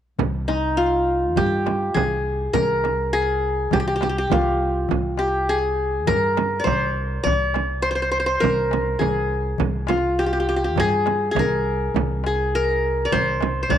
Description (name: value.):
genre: Arabic maqam ensemble.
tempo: 102 BPM.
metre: 4/4.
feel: straight.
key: C maqam bayati.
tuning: A4 = 442 Hz.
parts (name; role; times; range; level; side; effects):
upright bass; bass; 0.2-13.8 s; C2 to G2; -26 LUFS; equal; none.
darbuka; percussion; 0.2-13.8 s; none; -31 LUFS; left 10 dB; none.
frame drum; percussion; 0.2-13.8 s; none; -25 LUFS; right 8 dB; none.
qanun; melody; 0.5-13.8 s; Eb4 to D5-50c; -21 LUFS; left 1 dB; slapback echo.
room: moderate spring reverb, RT60 2.9 s.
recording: 1960s-style stereo with parts hard left and right, faint mains hum.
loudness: -19 LUFS.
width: side -10 dB against mid.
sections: 0.2-13.8 A section.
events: none.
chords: none.